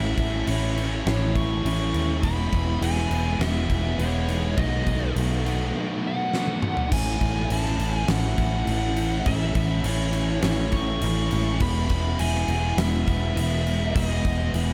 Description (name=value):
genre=rock, shoegaze and dream pop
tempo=102 BPM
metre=4/4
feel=straight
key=unclear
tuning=A4 = 440 Hz
part: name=fuzz lead guitar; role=melody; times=0.0-14.5 s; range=C#5 to C#6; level=-34 LUFS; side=equal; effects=distortion, analog delay
part: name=biting overdriven guitar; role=riff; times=0.0-14.7 s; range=E2 to F#4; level=-33 LUFS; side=equal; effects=lush chorus
part: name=distorted electric guitar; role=riff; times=0.0-6.9 s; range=A2 to E4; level=-38 LUFS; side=equal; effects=distortion
part: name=mellow electric guitar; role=riff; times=0.0-14.7 s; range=A2 to E4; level=-32 LUFS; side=equal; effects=reverse reverb
part: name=vintage muted fingered electric bass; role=bass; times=0.0-14.7 s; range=E1 to D#2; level=-28 LUFS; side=equal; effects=none
part: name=huge arena drum kit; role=drums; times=0.2-14.7 s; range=crash cymbal, kick drum, snare drum, toms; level=-31 LUFS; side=equal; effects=none
room=moderate huge ambient reverb, RT60 6.8 s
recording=dreamy mix soaked in reverb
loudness=-24 LUFS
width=mono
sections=0.0-6.9 A section; 6.9-14.7 A section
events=drum fill 6.3-6.9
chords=0.0 A; 2.2 E; 4.6 B7; 6.9 A; 11.6 E